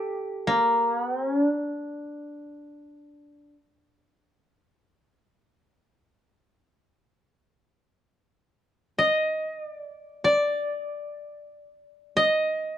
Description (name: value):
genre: japanese traditional, Japanese chamber music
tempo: free time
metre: none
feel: none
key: unclear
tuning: A4 = 440 Hz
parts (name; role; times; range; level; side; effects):
- koto; solo; 0.0-12.8 s; D4 to Eb5; -24 LUFS; equal; none
room: light reverb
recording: worn, warbling old tape, cassette tape, warbly pitch drift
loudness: -23 LUFS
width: side -10 dB against mid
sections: 0.0-7.1 A section; 7.1-12.8 A section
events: none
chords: none